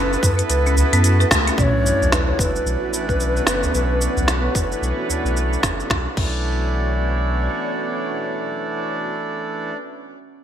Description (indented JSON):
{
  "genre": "organic downtempo",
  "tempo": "111 BPM",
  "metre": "4/4",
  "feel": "swing 60% on 16ths",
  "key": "B minor",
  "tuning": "A4 = 440 Hz",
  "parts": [
    { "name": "mellow hollow Native American-style cedar flute", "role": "melody", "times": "0.0-5.4 s", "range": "B4 to D5", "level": "-25 LUFS", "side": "left 1 dB", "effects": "digital delay" },
    { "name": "hand-pumped harmonium", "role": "accompaniment", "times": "0.0-9.8 s", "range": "E3 to A4", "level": "-26 LUFS", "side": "right 3 dB", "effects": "sidechain pumping, low-pass filter, digital delay" },
    { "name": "granular cloud pad", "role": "sustained chords", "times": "0.0-9.5 s", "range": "B3 to D5", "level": "-28 LUFS", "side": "equal", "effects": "built-in reverb, lush chorus, sidechain pumping" },
    { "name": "folk marimba with hard mallets", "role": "arpeggios", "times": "0.0-1.6 s", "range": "A3 to B4", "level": "-24 LUFS", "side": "equal", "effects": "digital delay" },
    { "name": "warm sub bass", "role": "bass", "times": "0.0-7.5 s", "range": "F#1 to F#2", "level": "-21 LUFS", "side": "equal", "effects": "sidechain pumping" },
    { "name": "bronze singing bowl", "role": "texture", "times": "0.0-5.9 s", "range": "B3 to C#4", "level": "-36 LUFS", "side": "right 6 dB", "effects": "none" },
    { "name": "organic electronic drum kit", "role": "drums", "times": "0.1-6.4 s", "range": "crash cymbal, hi-hat, shaker, snare drum", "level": "-23 LUFS", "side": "equal", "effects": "gated reverb" },
    { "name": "electronic kick drum", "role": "drums", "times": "0.2-6.4 s", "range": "none", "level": "-22 LUFS", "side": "equal", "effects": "none" },
    { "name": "udu", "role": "percussion", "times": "0.8-5.2 s", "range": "none", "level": "-26 LUFS", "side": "equal", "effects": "none" },
    { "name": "sub drop", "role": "sound effects", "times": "1.6-3.7 s", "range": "none", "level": "-27 LUFS", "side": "equal", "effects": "none" }
  ],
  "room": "moderate plate reverb, RT60 1.6 s, studio reverb",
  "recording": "bright 1980s-style digital production",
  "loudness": "-18 LUFS",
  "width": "side -10 dB against mid",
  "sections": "0.0-1.6 A section; 1.6-5.9 B section; 5.9-10.2 C section",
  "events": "band accent 1.3; impact 1.6-3.7",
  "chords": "0.0 F#7sus4; 1.6 Bm"
}